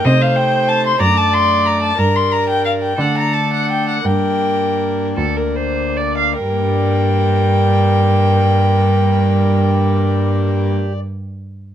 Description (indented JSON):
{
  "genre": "classical, baroque-style sonata movement with continuo",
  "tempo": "48-63 BPM (dotted quarters)",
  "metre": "6/8",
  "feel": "straight",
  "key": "G minor",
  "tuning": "A4 = 439 Hz",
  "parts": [
    { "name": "dark violin", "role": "melody", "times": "0.0-10.7 s", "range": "Eb5 to C6", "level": "-19 LUFS", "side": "left 4 dB", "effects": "none" },
    { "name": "dark violin", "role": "second line", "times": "0.0-10.7 s", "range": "A4 to F5", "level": "-20 LUFS", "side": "right 3 dB", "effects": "none" },
    { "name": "pipe organ, foundations", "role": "accompaniment", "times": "0.0-11.0 s", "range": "D2 to D5", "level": "-21 LUFS", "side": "left 2 dB", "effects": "none" },
    { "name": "rich cello", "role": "bass", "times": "0.0-10.7 s", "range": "D2 to D3", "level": "-17 LUFS", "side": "right 1 dB", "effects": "none" }
  ],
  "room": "little or no reverb",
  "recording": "close, detailed microphones",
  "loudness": "-13 LUFS",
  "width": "side -10 dB against mid",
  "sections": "0.0-6.4 A section; 6.4-11.4 B section",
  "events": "slowing down 1.0-6.4",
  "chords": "0.0 Adim/C; 1.0 D/F#; 2.0 Gm; 3.0 D5; 4.0 Gm"
}